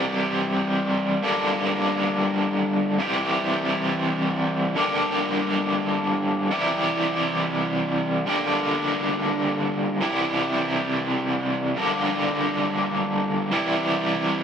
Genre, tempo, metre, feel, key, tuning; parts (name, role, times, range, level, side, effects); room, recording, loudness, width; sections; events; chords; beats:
rock; free time; G dorian; A4 = 440 Hz
raw garage guitar; solo; 0.0-14.4 s; G2 to G4; -21 LUFS; equal; overdrive, tremolo
moderate studio reverb, RT60 0.5 s; band playing live in one room; -21 LUFS; side -7 dB against mid
0.0-11.8 A section; 11.8-14.4 B section
0.0 C; 1.2 Gm; 3.0 C; 4.8 Gm; 6.5 C; 8.3 Gm; 10.0 C; 11.8 Gm; 13.5 C
free time